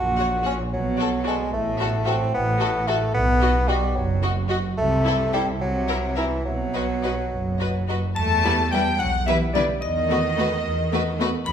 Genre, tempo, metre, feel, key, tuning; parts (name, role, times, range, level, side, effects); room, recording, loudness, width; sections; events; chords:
cinematic, playful, whimsical film cue; 73 BPM (dotted quarters); 6/8; straight; A4 = 440 Hz
clear bassoon; accompaniment; 0.0-7.9 s; E3 to F#4; -24 LUFS; equal
rich studio cello section; bass; 0.0-11.5 s; F#2 to B3; -27 LUFS; right 1 dB
rich studio double bass section; bass; 0.0-11.5 s; F#1 to E2; -27 LUFS; right 1 dB
warm studio violin section; melody; 0.2-11.5 s; D5 to B5; -30 LUFS; left 5 dB
rich studio violin section; second line; 0.2-11.3 s; E4 to C#5; -30 LUFS; left 3 dB
rich studio viola section; accompaniment; 0.2-11.3 s; G3 to F#4; -30 LUFS; left 1 dB
xylophone with wooden mallets; melody; 8.2-11.5 s; D5 to B5; -30 LUFS; left 1 dB
clear clarinet; second line; 8.2-11.5 s; D5 to B5; -26 LUFS; equal
wet recital hall reverb, RT60 1.4 s; minimal, uncompressed stereo recording; -20 LUFS; side -8 dB against mid
0.0-8.2 A section; 8.2-11.5 B section
0.0 F#/A#; 0.7 B5; 1.5 Am69; 3.1 B5; 4.8 Am/C; 5.6 C; 6.5 B5; 8.2 Em; 9.8 B7/E